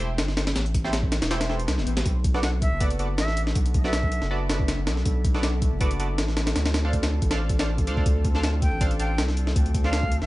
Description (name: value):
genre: drum and bass, jungle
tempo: 160 BPM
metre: 4/4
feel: swing 53% on 16ths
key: B phrygian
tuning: A4 = 438 Hz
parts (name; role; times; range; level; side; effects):
- band-passed chord stab; stabs; 0.0-9.9 s; A3 to F5; -33 LUFS; right 2 dB; chorus, phaser, dub echo
- saturated sub bass; bass; 0.0-10.3 s; E1 to D2; -26 LUFS; equal; none
- breakbeat sampler-style drum kit; drums; 0.0-10.3 s; hi-hat, kick drum, snare drum; -24 LUFS; equal; studio reverb
- swell; sound effects; 1.5-2.1 s; none; -36 LUFS; left 6 dB; none
- warbly tape-like pad; sustained chords; 2.5-10.3 s; B3 to A4; -36 LUFS; equal; chorus, built-in reverb, vintage 12-bit sampler grit
- jazz flute; melody; 2.3-4.4, 8.3-10.3 s; E5 to A5; -33 LUFS; equal; dub echo
room: little or no reverb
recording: vinyl crackle, nothing above 10.8 kHz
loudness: -22 LUFS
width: side -18 dB against mid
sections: 0.0-10.3 A section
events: swell 1.5-2.1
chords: 0.0 Am7; 2.1 Bm7; 6.6 Dm7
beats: 0.18 | 0.56 0.93 1.31 1.68 | 2.06 2.43 2.81 3.18 | 3.56 3.93 4.31 4.68 | 5.06 5.43 5.81 6.18 | 6.56 6.93 7.31 7.68 | 8.06 8.43 8.81 9.18 | 9.56 9.93